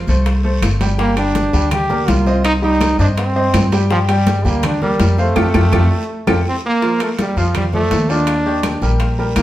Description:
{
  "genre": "latin, salsa",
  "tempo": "165 BPM",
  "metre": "4/4",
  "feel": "straight",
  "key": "Bb major",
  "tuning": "A4 = 440 Hz",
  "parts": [
    { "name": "bright baby grand piano", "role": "accompaniment", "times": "0.1-9.4 s", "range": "Eb3 to G5", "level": "-21 LUFS", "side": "equal", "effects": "none" },
    { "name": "upright bass", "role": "bass", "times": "0.1-9.4 s", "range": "G1 to G2", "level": "-16 LUFS", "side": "equal", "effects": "none" },
    { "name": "bongos", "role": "percussion", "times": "0.1-9.4 s", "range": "none", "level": "-27 LUFS", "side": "left 3 dB", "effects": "none" },
    { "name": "congas", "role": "percussion", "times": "0.1-9.4 s", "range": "none", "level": "-24 LUFS", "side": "left 1 dB", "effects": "none" },
    { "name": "guiro", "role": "percussion", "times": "0.1-9.4 s", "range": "none", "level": "-33 LUFS", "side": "right 2 dB", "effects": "none" },
    { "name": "timbales", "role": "percussion", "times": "0.3-9.4 s", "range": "none", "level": "-26 LUFS", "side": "right 4 dB", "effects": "none" },
    { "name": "claves", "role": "percussion", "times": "0.6-9.4 s", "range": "none", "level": "-30 LUFS", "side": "left 2 dB", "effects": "none" },
    { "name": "bright trombone", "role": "melody", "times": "1.0-9.4 s", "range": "F3 to G4", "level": "-18 LUFS", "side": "right 1 dB", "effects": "none" }
  ],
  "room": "wet studio reverb, RT60 0.9 s",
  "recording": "heard from further back in the room",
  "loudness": "-13 LUFS",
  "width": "side -14 dB against mid",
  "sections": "0.0-6.8 A section; 6.8-9.4 B section",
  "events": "band accent 5.4-6.8; drum fill 5.9-6.8",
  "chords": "0.0 F (rootless); 1.0 Gm; 2.4 Cm; 3.9 Gm; 5.4 Fadd9; 6.8 Bbmaj7; 8.3 Ebmaj7"
}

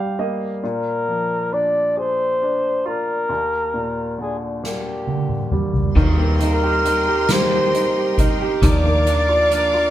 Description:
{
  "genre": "six-eight pop ballad",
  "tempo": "45 BPM (dotted quarters)",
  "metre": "6/8",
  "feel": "straight",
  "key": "unclear",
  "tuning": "A4 = 439 Hz",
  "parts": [
    { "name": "breathy flugelhorn", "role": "melody", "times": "0.0-9.9 s", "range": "G4 to D5", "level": "-20 LUFS", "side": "equal", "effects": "none" },
    { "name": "clear baby grand piano", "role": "accompaniment", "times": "0.0-9.9 s", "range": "Eb2 to G5", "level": "-24 LUFS", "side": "right 1 dB", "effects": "none" },
    { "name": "soft-mallet drum kit", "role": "drums", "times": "4.6-9.7 s", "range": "crash cymbal, hi-hat, kick drum, snare drum, toms", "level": "-21 LUFS", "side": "equal", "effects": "none" },
    { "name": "clear studio string section", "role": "sustained chords", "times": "6.0-9.9 s", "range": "Bb4 to D6", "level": "-27 LUFS", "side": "left 1 dB", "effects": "none" },
    { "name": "clean electric guitar", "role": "arpeggios", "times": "6.0-9.9 s", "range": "Eb3 to Bb4", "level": "-26 LUFS", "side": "left 1 dB", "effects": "none" },
    { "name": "vintage muted fingered electric bass", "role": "bass", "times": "6.0-9.9 s", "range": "Eb2", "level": "-21 LUFS", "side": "equal", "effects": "none" }
  ],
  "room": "wet studio ambience, RT60 0.5 s",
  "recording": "band playing live in one room",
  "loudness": "-17 LUFS",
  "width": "side -12 dB against mid",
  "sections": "0.0-6.0 A section; 6.0-9.9 B section",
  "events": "grand piano fill 0.0-0.6; drum fill 4.6-6.0",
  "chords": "0.0 Gm7; 0.6 Bb7; 3.3 Ebmaj7; 6.0 Cm7/Eb; 8.6 Bb/Eb"
}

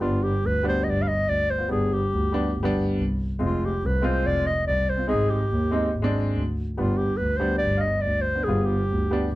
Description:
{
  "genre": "klezmer",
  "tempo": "142 BPM",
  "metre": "4/4",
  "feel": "straight",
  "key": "G phrygian dominant",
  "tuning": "A4 = 439 Hz",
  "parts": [
    { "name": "mellow clarinet", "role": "melody", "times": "0.0-9.4 s", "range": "F4 to F5", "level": "-26 LUFS", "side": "equal", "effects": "plate reverb" },
    { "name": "clear upright piano", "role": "accompaniment", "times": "0.0-9.3 s", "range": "G3 to F4", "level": "-27 LUFS", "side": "equal", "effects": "none" },
    { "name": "dark double bass", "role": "bass", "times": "0.0-9.4 s", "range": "F1 to Eb2", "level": "-25 LUFS", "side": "equal", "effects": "none" }
  ],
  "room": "light reverb",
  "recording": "dark, warm production",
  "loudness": "-22 LUFS",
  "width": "side -17 dB against mid",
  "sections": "0.0-9.4 A section",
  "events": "none",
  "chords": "0.0 G; 3.4 Fm; 5.1 Ab; 6.8 G"
}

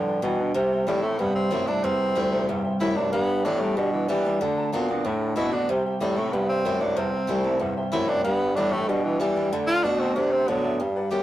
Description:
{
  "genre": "rock",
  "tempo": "188 BPM",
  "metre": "4/4",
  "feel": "straight",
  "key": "unclear",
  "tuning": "A4 = 439 Hz",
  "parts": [
    { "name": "picked steel-string acoustic guitar", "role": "accompaniment", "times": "0.0-11.2 s", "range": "G2 to G4", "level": "-32 LUFS", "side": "left 2 dB", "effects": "none" },
    { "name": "electric guitar through a small old amp", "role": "riff", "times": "0.0-10.8 s", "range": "G2 to B3", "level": "-30 LUFS", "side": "right 2 dB", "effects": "none" },
    { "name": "clear bassoon", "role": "bass", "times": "0.0-11.2 s", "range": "C2 to E3", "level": "-26 LUFS", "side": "equal", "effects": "none" },
    { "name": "clear upright piano", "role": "accompaniment", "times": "0.1-11.2 s", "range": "A4 to A5", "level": "-34 LUFS", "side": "left 1 dB", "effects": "none" },
    { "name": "breathy tenor saxophone", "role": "melody", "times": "0.9-11.2 s", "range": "E3 to G4", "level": "-25 LUFS", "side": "equal", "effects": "none" }
  ],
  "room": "moderate small room reverb, RT60 0.6 s",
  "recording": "rough rehearsal-room recording, warm saturation",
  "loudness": "-22 LUFS",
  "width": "side -14 dB against mid",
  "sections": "0.6-10.8 A section",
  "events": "none",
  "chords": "0.0 G; 0.6 C; 3.1 G; 4.4 D7; 5.7 C; 8.2 G; 9.5 D7"
}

